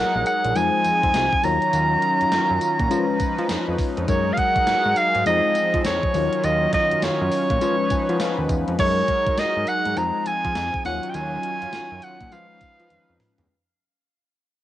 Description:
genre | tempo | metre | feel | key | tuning
R&B, new jack swing | 102 BPM | 4/4 | swing 63% on 16ths | Eb minor | A4 = 440 Hz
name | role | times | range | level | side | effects
breathy soprano saxophone | melody | 0.0-13.2 s | Db5 to Bb5 | -21 LUFS | equal | cassette tape
FM electric piano with tremolo | accompaniment | 0.0-13.5 s | F3 to Ab5 | -29 LUFS | left 9 dB | none
brassy analog pad | sustained chords | 0.0-13.5 s | Eb3 to Cb5 | -27 LUFS | right 1 dB | chorus
fat analog bass | bass | 0.0-13.5 s | Bb1 to F3 | -27 LUFS | equal | tube saturation
gated 80s digital drum machine | drums | 0.3-13.5 s | crash cymbal, hi-hat, kick drum, snare drum, tambourine, toms | -28 LUFS | equal | gated reverb, gated reverb snare, cassette tape
room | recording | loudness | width
light reverb | home recording on cassette | -19 LUFS | side -13 dB against mid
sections
0.0-8.8 A section; 8.8-13.5 B section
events
FM electric piano fill 7.6-8.8; fade-out 8.8-13.5; drum fill 12.9-13.5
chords
0.0 Gb69; 0.6 Fm7; 1.4 Ebm9; 2.9 Db7/F; 4.1 Gb69; 5.3 Fm7; 6.1 Ebm9; 7.6 Db7/F; 8.8 Gb69; 10.0 Fm7; 10.8 Ebm9; 12.3 Db7/F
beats
0.55 1.14 | 1.73 2.32 2.90 3.49 | 4.08 4.67 5.26 5.85 | 6.43 7.02 7.61 8.20 | 8.79 9.38 9.96 10.55 | 11.14 11.73 12.32 12.90

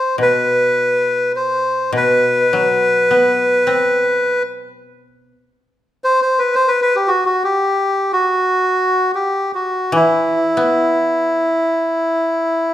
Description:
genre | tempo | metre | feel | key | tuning
japanese traditional, Japanese chamber music | free time | none | none | unclear | A4 = 440 Hz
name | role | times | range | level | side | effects
melodica | melody | 0.0-12.7 s | E4 to C5 | -14 LUFS | equal | none
koto | accompaniment | 0.2-12.7 s | B2 to C4 | -20 LUFS | equal | none
room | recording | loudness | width
moderate recital hall reverb, RT60 1.4 s | minimal, uncompressed stereo recording | -14 LUFS | side -12 dB against mid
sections
0.0-12.7 A section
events
slowing down 6.6-12.7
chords
none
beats
free time

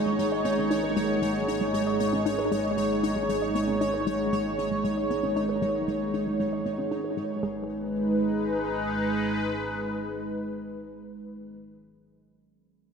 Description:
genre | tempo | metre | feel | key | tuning
ambient, sequencer-driven space music | 116 BPM | 4/4 | straight | G# minor | A4 = 442 Hz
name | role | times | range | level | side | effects
sweeping resonant pad | sustained chords | 0.0-11.6 s | G#3 to C#5 | -26 LUFS | right 1 dB | chorus
concert harp | arpeggios | 0.0-10.9 s | D#3 to G#4 | -41 LUFS | left 3 dB | auto-pan, tape echo
hollow square pluck | riff | 0.0-7.7 s | G#3 to D#5 | -33 LUFS | left 2 dB | chorus, tape echo
analog drone | bass | 0.1-8.9 s | G#1 | -44 LUFS | equal | chorus
pulsing gated texture | texture | 0.0-7.5 s | D#4 to C#5 | -35 LUFS | left 3 dB | chorus, built-in reverb
room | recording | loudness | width
wet spring reverb, RT60 2.2 s | echo-heavy mix | -25 LUFS | side -6 dB against mid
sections
0.0-7.4 A section; 7.4-11.6 B section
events
fade-out on harp 0.0-7.4; fade-out on synth drone 0.0-7.4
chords
0.0 G#m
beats
0.19 0.71 | 1.22 1.74 2.26 2.77 | 3.29 3.81 4.33 4.84 | 5.36 5.88 6.40 6.91 | 7.43 7.95 8.46 8.98 | 9.50 10.02 10.53 11.05

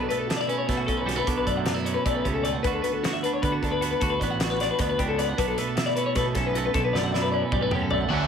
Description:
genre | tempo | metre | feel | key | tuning
math rock and midwest emo | 307 BPM (eighths) | 7/8 | straight | unclear | A4 = 440 Hz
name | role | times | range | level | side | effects
twelve-string electric guitar | accompaniment | 0.0-8.3 s | D2 to F#4 | -28 LUFS | right 8 dB | none
twelve-string electric guitar | arpeggios | 0.0-8.3 s | F#4 to F#5 | -26 LUFS | left 6 dB | none
fuzz fingered electric bass | bass | 0.0-8.3 s | A1 to D3 | -30 LUFS | equal | overdrive
loose indie drum kit | drums | 0.1-8.0 s | hi-hat, kick drum, snare drum, toms | -30 LUFS | equal | none
biting overdriven guitar | riff | 8.1-8.3 s | D3 to D4 | -26 LUFS | right 1 dB | none
room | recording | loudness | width
moderate small room reverb, RT60 0.5 s | none | -23 LUFS | side -7 dB against mid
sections
0.0-8.1 A section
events
drum fill 6.9-8.1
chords
0.0 Bm9; 2.6 D6; 5.4 Bm9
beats
0.10 0.30 0.49 0.69 0.88 1.08 | 1.27 1.47 1.67 1.86 2.06 2.25 2.45 | 2.64 2.84 3.03 3.23 3.42 3.62 3.81 | 4.01 4.20 4.40 4.59 4.79 4.98 5.18 | 5.37 5.57 5.76 5.96 6.16 6.35 6.54 | 6.74 6.94 7.13 7.33 7.52 7.72 7.91 | 8.11

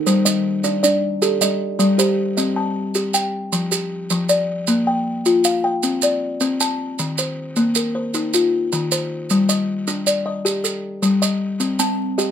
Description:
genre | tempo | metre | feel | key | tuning
southern african traditional, mbira-style interlocking cycle | 104 BPM (dotted quarters) | 12/8 | straight | C dorian | A4 = 440 Hz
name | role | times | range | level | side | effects
buzzing kalimba | arpeggios | 0.0-12.3 s | Eb3 to A5 | -19 LUFS | left 2 dB | none
kalimba | arpeggios | 0.0-2.8, 11.8-12.3 s | G3 to Eb5 | -22 LUFS | right 4 dB | none
maracas | percussion | 0.1-12.3 s | none | -22 LUFS | right 8 dB | none
room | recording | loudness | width
little or no reverb | close, detailed microphones | -17 LUFS | side -8 dB against mid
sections
0.0-2.4 A section; 2.4-12.3 A section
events
none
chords
0.1 G5; 2.4 Cm; 3.5 Dmadd11/F; 4.7 Bb; 5.8 C5; 7.0 Eb5; 9.3 G5; 11.6 Cm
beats
| 0.06 0.64 1.22 1.79 | 2.37 2.94 3.52 4.10 | 4.68 5.25 5.83 6.41 | 6.99 7.57 8.14 8.72 | 9.30 9.87 10.45 11.03 | 11.61 12.18

